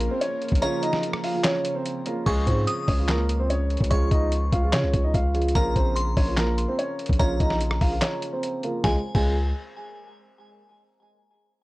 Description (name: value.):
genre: hip hop, trap.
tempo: 146 BPM.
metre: 4/4.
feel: half-time.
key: Db major.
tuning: A4 = 440 Hz.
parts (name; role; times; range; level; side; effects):
dark grand piano; melody; 0.0-9.3 s; Ab3 to F5; -28 LUFS; equal; low-pass filter, tape echo.
felt-muted upright piano; accompaniment; 0.0-9.3 s; Db3 to F4; -32 LUFS; right 2 dB; low-pass filter.
ethereal airy pad; sustained chords; 0.0-2.2 s; Db3 to Bb3; -37 LUFS; right 2 dB; ensemble chorus, built-in reverb.
long sustained 808-style bass; bass; 0.0-9.5 s; Bb1 to Db3; -24 LUFS; equal; none.
lo-fi sampler-style drum kit; drums; 0.0-9.2 s; crash cymbal, handclaps, hi-hat, kick drum, rim click, snare drum; -25 LUFS; equal; none.
glassy synth bell; second line; 0.6-9.3 s; Ab5 to Eb6; -33 LUFS; equal; chorus, tape echo.
room: little or no reverb.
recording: dry, gritty hardware recording, cassette tape.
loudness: -21 LUFS.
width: side -19 dB against mid.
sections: 0.0-2.3 A section; 2.3-8.8 B section; 8.8-10.5 C section.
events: kick muted 0.6-2.3; filter sweep 2.3-8.8; break 8.0-8.8.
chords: 0.0 Bbm; 2.3 Db; 5.6 Bbm; 8.8 Db.